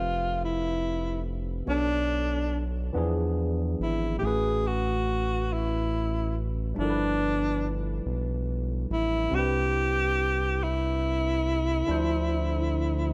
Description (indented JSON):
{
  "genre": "slow six-eight R&B",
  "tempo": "47 BPM (dotted quarters)",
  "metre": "6/8",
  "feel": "straight",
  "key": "unclear",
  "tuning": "A4 = 439 Hz",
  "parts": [
    { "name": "breathy tenor saxophone", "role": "melody", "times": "0.0-13.1 s", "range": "D4 to G#4", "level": "-30 LUFS", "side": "equal", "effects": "none" },
    { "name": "overdriven tine electric piano", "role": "accompaniment", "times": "0.0-13.1 s", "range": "A2 to E5", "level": "-35 LUFS", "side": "equal", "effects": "subtle chorus" },
    { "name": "round analog bass", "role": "bass", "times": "0.0-13.1 s", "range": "F1 to E2", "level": "-32 LUFS", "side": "equal", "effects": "none" }
  ],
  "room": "light reverb",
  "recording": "none",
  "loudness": "-28 LUFS",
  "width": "mono",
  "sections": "0.0-13.1 A section",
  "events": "none",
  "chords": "0.0 Fmaj9#11; 1.7 Bm9; 2.9 E7b9; 4.2 A69; 6.8 G13; 9.3 Cmaj9; 11.9 Dm7"
}